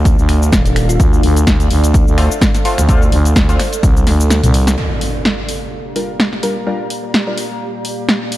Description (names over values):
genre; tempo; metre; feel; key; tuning
bass house; 127 BPM; 4/4; swing 55% on 16ths; G minor; A4 = 445 Hz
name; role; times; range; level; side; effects
growling FM bass; bass; 0.0-4.8 s; Eb1 to D2; -13 LUFS; equal; overdrive, sidechain pumping
ethereal airy pad; texture; 0.0-8.4 s; D4 to Bb5; -23 LUFS; right 1 dB; ensemble chorus, built-in reverb, sidechain pumping
electronic kick drum; drums; 0.1-3.9 s; none; -14 LUFS; equal; small room reverb
house drum kit; drums; 0.1-8.4 s; finger snaps, hi-hat, shaker, snare drum, toms; -18 LUFS; equal; small room reverb
thumb-piano-like synth pluck; melody; 0.9-1.2 s; F4; -29 LUFS; equal; none
band-passed chord stab; stabs; 2.2-7.4 s; D3 to Bb4; -22 LUFS; left 1 dB; chorus, phaser, sidechain pumping, dub echo
dark analog pad; sustained chords; 5.6-8.4 s; Bb3 to F5; -28 LUFS; left 3 dB; chorus, sidechain pumping
impact; sound effects; 4.8-6.7 s; none; -23 LUFS; equal; none
room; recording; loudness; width
light reverb; dark, warm production; -11 LUFS; side -15 dB against mid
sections
0.0-4.8 A section; 4.8-8.4 B section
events
drum fill 4.1-4.8; kick drops out 4.3-4.8; impact 4.8-6.7; filter sweep on synth stab 4.8-8.4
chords
0.0 Dm7; 4.8 Gm7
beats
0.05 0.53 | 1.00 1.47 1.94 2.42 | 2.89 3.36 3.83 4.30 | 4.78 5.25 5.72 6.19 | 6.67 7.14 7.61 8.08